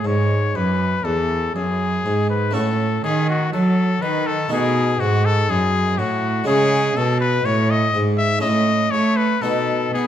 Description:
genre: classical, baroque-style sonata movement with continuo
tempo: 61 BPM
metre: 4/4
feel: rubato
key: unclear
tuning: A4 = 440 Hz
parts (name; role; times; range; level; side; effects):
- bright trumpet; melody; 0.0-10.1 s; F#4 to E5; -21 LUFS; left 4 dB; none
- harpsichord; accompaniment; 0.0-10.1 s; E2 to F#4; -23 LUFS; right 1 dB; none
- rich cello; bass; 0.0-10.1 s; E2 to B3; -20 LUFS; right 2 dB; none
room: moderate recital hall reverb, RT60 1.3 s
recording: dark, warm production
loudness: -17 LUFS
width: side -10 dB against mid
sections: 0.0-10.1 A section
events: none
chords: 0.0 C#m; 2.5 F#m/A; 4.5 B7; 6.5 C#m; 8.4 A; 9.4 B7

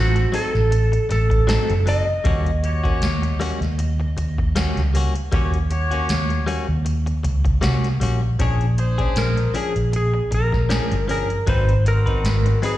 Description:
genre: straight-eighth soul blues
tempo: 78 BPM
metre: 4/4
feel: swing 55% on 16ths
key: unclear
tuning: A4 = 438 Hz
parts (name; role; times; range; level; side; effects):
- clean lap steel guitar; melody; 0.0-12.8 s; F#4 to Eb5; -25 LUFS; right 1 dB; slapback echo
- warm horn section; sustained chords; 0.0-12.6 s; F#3 to Db5; -29 LUFS; left 1 dB; none
- vintage muted fingered electric bass; bass; 0.0-12.5 s; F#1 to Eb2; -19 LUFS; equal; none
- direct-recorded clean electric guitar; stabs; 0.2-12.8 s; F3 to B4; -28 LUFS; left 4 dB; slapback echo
- soft vintage rhythm box; drums; 0.2-12.8 s; hi-hat, kick drum, snare drum; -24 LUFS; equal; overdrive
room: little or no reverb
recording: live gig heard through the venue's PA, recital hall reverb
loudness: -18 LUFS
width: side -14 dB against mid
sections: 0.0-12.8 A section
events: none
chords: 0.0 Adim7; 2.3 Eb7#9; 8.4 Bb7#9; 11.5 Ab7#9

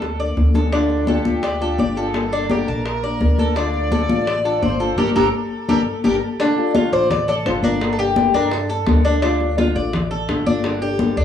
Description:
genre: latin, Cuban son and guajira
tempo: 170 BPM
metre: 4/4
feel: straight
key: D minor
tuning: A4 = 442 Hz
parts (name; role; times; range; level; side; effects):
- nylon-string guitar; accompaniment; 0.0-11.2 s; D3 to A4; -24 LUFS; left 3 dB; cassette tape
- Cuban tres; arpeggios; 0.0-11.2 s; D4 to A5; -22 LUFS; right 1 dB; cassette tape
- upright bass; bass; 0.0-11.2 s; G1 to G2; -23 LUFS; equal; none
- bongos; percussion; 0.0-11.2 s; none; -29 LUFS; left 4 dB; none
- congas; percussion; 0.0-11.2 s; none; -23 LUFS; left 3 dB; none
- warm studio violin section; second line; 0.7-6.4 s; G4 to D5; -26 LUFS; left 1 dB; cassette tape
- Cuban tres; melody; 6.4-9.0 s; G4 to D5; -20 LUFS; left 3 dB; none
room: moderate spring reverb, RT60 1.7 s, studio reverb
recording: home recording on cassette, small room ambience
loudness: -16 LUFS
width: side -9 dB against mid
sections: 0.0-6.4 A section; 6.4-11.2 B section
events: drum fill 0.0-0.7; band accent 5.0-6.4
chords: 0.0 Gmadd9 (rootless); 0.7 Dm; 2.1 Gmadd9; 3.6 Dm; 5.0 Gmadd9; 6.4 Dm; 7.8 Gmadd9; 9.2 Dm; 10.6 Gmadd9

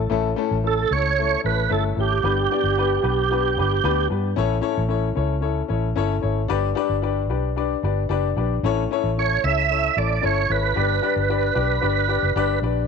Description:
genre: uptempo 1960s-style soul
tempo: 113 BPM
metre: 4/4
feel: straight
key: A mixolydian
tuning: A4 = 440 Hz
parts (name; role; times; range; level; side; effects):
- vintage muted fingered electric bass; bass; 0.0-12.8 s; F#1 to G2; -24 LUFS; right 1 dB; none
- warm grand piano; accompaniment; 0.1-12.8 s; G2 to D5; -24 LUFS; left 12 dB; none
- tonewheel organ; melody; 0.7-4.1, 9.2-12.6 s; G4 to E5; -22 LUFS; right 11 dB; overdrive, chorus vibrato, slow rotary speaker
room: moderate echo chamber reverb, RT60 2.1 s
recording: 1960s-style stereo with parts hard left and right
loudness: -19 LUFS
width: side -5 dB against mid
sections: 0.1-12.9 A section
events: none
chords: 0.1 A; 2.2 G; 4.4 A; 6.5 G; 8.6 A; 10.8 G

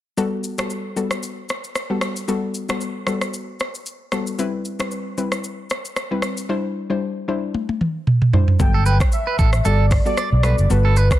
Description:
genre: afrobeats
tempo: 114 BPM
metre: 4/4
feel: swing 55% on 16ths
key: G major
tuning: A4 = 440 Hz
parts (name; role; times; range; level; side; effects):
- soft round pluck; accompaniment; 0.2-11.2 s; F#3 to C5; -24 LUFS; left 3 dB; chorus
- afro-pop drum kit; drums; 0.2-11.2 s; hi-hat, kick drum, rim click, shaker, toms; -21 LUFS; right 1 dB; soft clipping on snare
- warm velvety synth lead; melody; 8.6-11.2 s; B4 to G5; -25 LUFS; right 1 dB; chorus, digital delay
- fingered electric bass; bass; 8.6-11.1 s; F#1 to B1; -16 LUFS; equal; none
- clean electric guitar; riff; 8.7-11.1 s; A4 to D5; -25 LUFS; right 6 dB; digital delay
room: little or no reverb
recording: dense, heavily limited modern master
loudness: -18 LUFS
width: side -14 dB against mid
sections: 0.2-8.6 A section; 8.6-11.2 B section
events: drum fill 7.5-8.6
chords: 0.2 Gmaj9; 4.4 Cmaj7; 6.5 D9sus4; 8.6 Gmaj9

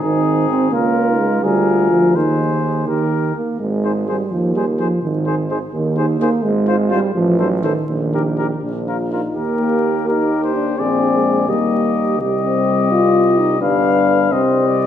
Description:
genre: classical, brass quintet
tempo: 84 BPM (dotted quarters)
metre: 6/8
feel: straight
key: Ab major, Eb major from 6.4 s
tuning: A4 = 440 Hz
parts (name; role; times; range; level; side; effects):
- clear trumpet; melody; 0.0-14.9 s; Ab4 to F5; -22 LUFS; left 7 dB; none
- mellow flugelhorn; second line; 0.0-14.9 s; Eb4 to D5; -24 LUFS; right 5 dB; none
- mellow French horn; accompaniment; 0.0-14.9 s; Bb3 to F4; -20 LUFS; left 4 dB; none
- mellow trombone; accompaniment; 0.0-14.9 s; Eb3 to C4; -20 LUFS; right 2 dB; none
- clear tuba; bass; 0.0-14.9 s; G1 to Eb2; -21 LUFS; right 2 dB; none
room: wet recital hall reverb, RT60 1.5 s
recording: dark, warm production, vinyl crackle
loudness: -14 LUFS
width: side -10 dB against mid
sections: 0.0-9.4 A section; 9.4-14.9 B section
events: none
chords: 0.0 Ab; 0.7 Bbm/Db; 1.4 Bb7/D; 2.2 Ab/Eb; 2.9 Eb; 3.6 Ab; 6.4 Fm7/Ab; 7.2 Adim; 7.9 Eb/Bb; 8.6 Bb; 9.4 Eb; 10.8 Bb7; 11.5 Eb; 12.2 Cm; 13.6 G7; 14.3 Cm

